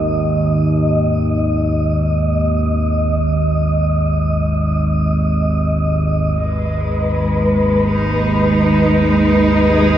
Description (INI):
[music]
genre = dark ambient drone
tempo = free time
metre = none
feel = none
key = G# minor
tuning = A4 = 440 Hz
[part]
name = analog drone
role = drone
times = 0.0-10.0 s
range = G#1 to D#2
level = -16 LUFS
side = equal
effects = chorus
[part]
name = wind-like tuned noise texture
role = texture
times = 0.0-10.0 s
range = B4 to D#5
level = -20 LUFS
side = left 1 dB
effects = built-in reverb, shimmer reverb
[part]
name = clear symphonic cello section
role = sustained chords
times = 6.4-10.0 s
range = G#3 to G#4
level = -16 LUFS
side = right 2 dB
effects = none
[sound]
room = wet huge ambient reverb, RT60 7.4 s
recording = in a vast, echoing space, studio reverb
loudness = -14 LUFS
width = side -11 dB against mid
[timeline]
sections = 0.0-6.4 A section; 6.4-10.0 B section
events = none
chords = 0.0 G#5